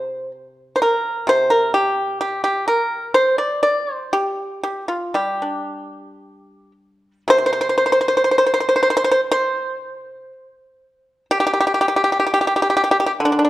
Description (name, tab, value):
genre	chinese traditional, Chinese solo plucked strings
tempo	54-64 BPM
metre	4/4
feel	rubato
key	unclear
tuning	A4 = 440 Hz
part	pipa	solo	0.0-13.5 s	C3 to D5	-16 LUFS	equal	none
room	moderate recital hall reverb, RT60 1.5 s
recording	dark, warm production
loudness	-16 LUFS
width	side -15 dB against mid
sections	0.0-7.3 A section; 7.3-13.5 B section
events	none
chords	none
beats	0.35 1.28 2.22 | 3.17 4.15 5.16 6.21 | 7.29 8.33 9.34 10.33 | 11.30 12.26 13.21